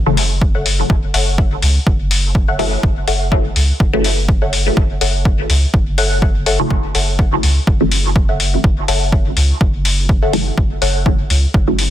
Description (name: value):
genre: dub techno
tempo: 124 BPM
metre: 4/4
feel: swing 55% on 16ths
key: F# minor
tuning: A4 = 439 Hz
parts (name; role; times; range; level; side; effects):
- soft dub sub bass; bass; 0.0-11.9 s; F#1 to C#2; -18 LUFS; equal; sidechain pumping
- filtered dub chord stab; stabs; 0.1-11.8 s; C#3 to A3; -20 LUFS; equal; phaser, sidechain pumping, dub echo
- electronic hi-hat; drums; 0.2-11.9 s; none; -20 LUFS; left 3 dB; none
- electronic kick drum; drums; 0.4-11.6 s; none; -15 LUFS; equal; overdrive
- filtered dub chord stab; riff; 0.5-10.9 s; A4 to F#5; -23 LUFS; left 3 dB; phaser, sidechain pumping, dub echo
room: digital ambience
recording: dense, heavily limited modern master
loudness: -13 LUFS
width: side -12 dB against mid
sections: 0.0-11.9 A section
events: filter sweep on synth stab 0.0-11.9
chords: 0.0 F#m7